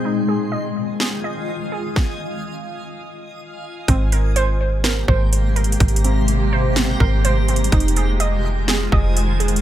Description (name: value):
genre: hip hop, atmospheric cloud-rap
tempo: 125 BPM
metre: 4/4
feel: half-time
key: unclear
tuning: A4 = 439 Hz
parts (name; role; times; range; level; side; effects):
- granular cloud pad; sustained chords; 0.0-9.6 s; C3 to C5; -24 LUFS; left 2 dB; built-in reverb, sidechain pumping, low-pass filter
- warbly dusty pluck; arpeggios; 0.0-9.6 s; C4 to Eb5; -25 LUFS; right 4 dB; chorus, low-pass filter, ping-pong delay
- backwards swelling texture; texture; 0.0-9.6 s; F4 to Bb5; -31 LUFS; equal; built-in reverb
- trap drum kit; drums; 1.0-9.6 s; hi-hat, kick drum, snare drum; -20 LUFS; equal; overdrive
- soft 808-style bass; bass; 3.9-9.6 s; F1 to Ab1; -18 LUFS; equal; none
room: light reverb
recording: none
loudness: -16 LUFS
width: side -12 dB against mid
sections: 0.0-3.9 A section; 3.9-9.6 B section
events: stop 2.0-3.9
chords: 0.0 Fm7; 3.9 Abmaj9; 7.7 Fm7